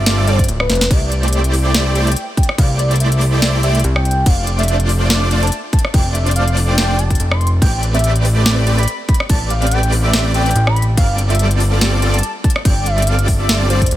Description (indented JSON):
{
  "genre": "future bass",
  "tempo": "143 BPM",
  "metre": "4/4",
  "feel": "swing 55% on 16ths, half-time",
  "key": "C major",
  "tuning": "A4 = 441 Hz",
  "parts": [
    { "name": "warm velvety synth lead", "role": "melody", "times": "0.0-14.0 s", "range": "B4 to C6", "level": "-23 LUFS", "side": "equal", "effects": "chorus, sidechain pumping, digital delay" },
    { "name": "airy dreamy lead", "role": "arpeggios", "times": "0.0-13.8 s", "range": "D5", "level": "-26 LUFS", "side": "equal", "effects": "chorus, sidechain pumping, digital delay" },
    { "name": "supersaw chords", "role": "riff", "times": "0.0-13.8 s", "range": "G3 to D5", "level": "-21 LUFS", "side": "right 1 dB", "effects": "sidechain pumping" },
    { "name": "fat analog bass", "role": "bass", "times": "0.0-14.0 s", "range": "D1 to C2", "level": "-15 LUFS", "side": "equal", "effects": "sidechain pumping" },
    { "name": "trap drum kit", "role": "drums", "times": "0.1-14.0 s", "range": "crash cymbal, hi-hat, rim click, snare drum", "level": "-20 LUFS", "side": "equal", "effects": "studio reverb" },
    { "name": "electronic kick drum", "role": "drums", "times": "0.4-13.9 s", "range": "none", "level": "-14 LUFS", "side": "equal", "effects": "studio reverb" }
  ],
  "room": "digital ambience",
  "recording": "none",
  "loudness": "-12 LUFS",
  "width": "side -14 dB against mid",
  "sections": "0.0-14.0 A section",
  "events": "drum fill 0.7",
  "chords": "0.0 G9sus4; 0.9 C69; 4.3 F6; 7.6 Am11; 11.0 G9sus4"
}